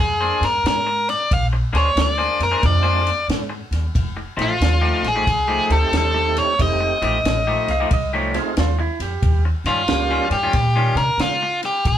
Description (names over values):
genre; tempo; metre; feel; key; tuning
electric blues shuffle; 91 BPM; 4/4; swing 65% on 8ths; unclear; A4 = 445 Hz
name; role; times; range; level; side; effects
biting overdriven guitar; melody; 0.0-12.0 s; F4 to F5; -20 LUFS; left 1 dB; none
electric guitar through a small old amp; riff; 0.0-11.5 s; Eb3 to C5; -24 LUFS; left 3 dB; none
upright bass; bass; 0.0-12.0 s; F1 to Db3; -22 LUFS; equal; none
compact cocktail drum kit; drums; 0.4-12.0 s; kick drum, ride cymbal, snare drum; -24 LUFS; equal; none
overdriven tonewheel organ; accompaniment; 2.6-10.3 s; Ab3 to G4; -26 LUFS; right 5 dB; chorus vibrato, slow rotary speaker
clean lap steel guitar; second line; 7.7-9.4 s; E4 to F5; -26 LUFS; right 6 dB; none
room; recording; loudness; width
moderate studio reverb, RT60 0.7 s; band playing live in one room; -17 LUFS; side -10 dB against mid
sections
0.0-12.0 A section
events
none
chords
0.0 Bb9; 3.9 F9; 9.2 Eb9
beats
0.64 | 1.30 1.97 2.62 3.29 | 3.94 4.60 5.26 5.92 | 6.58 7.24 7.90 8.56 | 9.22 9.88 10.53 11.19 | 11.85